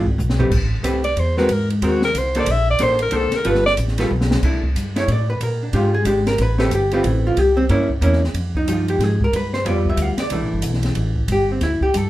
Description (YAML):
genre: jazz, small-group swing and bop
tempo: 184 BPM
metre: 3/4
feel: swing 63% on 8ths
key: C major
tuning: A4 = 440 Hz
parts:
  - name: warm alto saxophone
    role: melody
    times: 0.0-3.7 s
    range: Eb4 to E5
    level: -19 LUFS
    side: left 1 dB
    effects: none
  - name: archtop guitar, miked and amplified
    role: accompaniment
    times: 0.0-12.1 s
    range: E3 to F5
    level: -20 LUFS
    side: equal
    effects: none
  - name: upright bass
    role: bass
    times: 0.0-12.1 s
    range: G1 to Bb2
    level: -20 LUFS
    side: equal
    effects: none
  - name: open jazz drum kit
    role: drums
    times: 0.1-12.0 s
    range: crash cymbal, hi-hat, kick drum, ride cymbal, snare drum, toms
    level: -26 LUFS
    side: equal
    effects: none
room: wet club reverb, RT60 0.5 s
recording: heard from further back in the room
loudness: -16 LUFS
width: side -15 dB against mid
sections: 0.0-4.4 A section; 4.4-12.1 A section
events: alto saxophone solo 0.0-4.4; drum fill 0.2-0.5, 4.1-4.4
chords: 0.0 E (rootless); 0.5 Am9; 1.5 Ab9; 2.5 Bbmaj9; 3.5 G9; 4.4 C69; 5.4 Bb6; 6.4 Am9; 7.4 C7b9; 8.3 Fm9; 9.3 G7; 10.3 C69 (rootless)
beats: 0.19 | 0.52 0.84 1.17 | 1.50 1.82 2.15 | 2.48 2.80 3.13 | 3.45 3.78 4.11 | 4.43 4.76 5.09 | 5.41 5.74 6.07 | 6.39 6.72 7.04 | 7.37 7.70 8.02 | 8.35 8.68 9.00 | 9.33 9.65 9.98 | 10.31 10.63 10.96 | 11.28 11.61 11.94